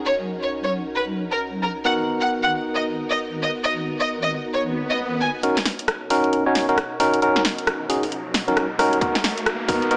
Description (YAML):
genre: UK garage, two-step garage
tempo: 134 BPM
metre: 4/4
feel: swing 61% on 16ths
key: unclear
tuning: A4 = 440 Hz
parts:
  - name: soft string machine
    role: sustained chords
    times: 0.0-10.0 s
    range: G#2 to A#4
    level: -35 LUFS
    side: equal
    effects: ensemble chorus, sidechain pumping
  - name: barky tine electric piano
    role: stabs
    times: 0.0-10.0 s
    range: B3 to C#5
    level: -25 LUFS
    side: equal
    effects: low-pass filter
  - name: deep soft wobble bass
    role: bass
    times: 0.0-5.4 s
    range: G#1 to B1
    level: -35 LUFS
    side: equal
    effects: chorus
  - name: dark studio violin section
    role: melody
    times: 0.1-5.3 s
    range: A#4 to G#5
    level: -26 LUFS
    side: equal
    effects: tape echo
  - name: swell and riser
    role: sound effects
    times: 4.7-10.0 s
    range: none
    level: -33 LUFS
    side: equal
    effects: none
  - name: garage drum kit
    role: drums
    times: 5.4-10.0 s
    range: hi-hat, rim click, snare drum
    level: -26 LUFS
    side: equal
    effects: studio ambience
  - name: electronic kick drum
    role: drums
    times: 9.0-9.8 s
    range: none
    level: -30 LUFS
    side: equal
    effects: studio ambience
room: moderate lush hall reverb, RT60 2.1 s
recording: small speaker sound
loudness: -22 LUFS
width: mono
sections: 0.0-5.4 A section; 5.4-10.0 B section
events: filter sweep on tine electric piano 0.0-5.4; swell 4.7-5.4; build-up 5.4-10.0; riser 5.4-10.0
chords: 0.0 Bmaj9; 1.9 G#m9; 5.4 Bmaj9; 9.0 G#m9